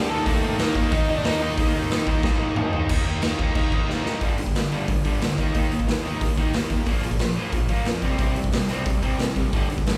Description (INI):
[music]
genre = punk rock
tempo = 181 BPM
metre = 4/4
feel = straight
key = unclear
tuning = A4 = 441 Hz
[part]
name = overdriven semi-hollow guitar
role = melody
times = 0.0-2.5 s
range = A3 to A5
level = -30 LUFS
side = equal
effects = none
[part]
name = distorted electric guitar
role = riff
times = 0.0-10.0 s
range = G2 to Eb4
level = -31 LUFS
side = equal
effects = distortion
[part]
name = tight distorted guitar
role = riff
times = 0.0-10.0 s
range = G2 to Eb4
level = -31 LUFS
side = equal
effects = distortion
[part]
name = fuzz picked electric bass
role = bass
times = 0.0-10.0 s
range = G1 to Eb3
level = -33 LUFS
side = equal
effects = overdrive
[part]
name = raw garage drum kit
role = drums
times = 0.3-9.9 s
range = crash cymbal, hi-hat, kick drum, snare drum, toms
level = -26 LUFS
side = equal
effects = none
[sound]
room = light reverb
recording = band playing live in one room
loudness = -23 LUFS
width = mono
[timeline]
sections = 0.0-2.9 A section; 2.9-4.2 B section; 4.2-10.0 C section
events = drum fill 2.2-2.9, 3.9-4.2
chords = 0.1 Eb5; 4.2 G5; 5.4 Eb5; 6.9 Bb5; 8.0 C5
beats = | 0.26 0.59 0.92 1.25 | 1.58 1.91 2.24 2.56 | 2.90 3.23 3.56 3.88 | 4.22 4.55 4.88 5.21 | 5.54 5.88 6.21 6.54 | 6.87 7.20 7.53 7.87 | 8.20 8.53 8.86 9.19 | 9.53 9.86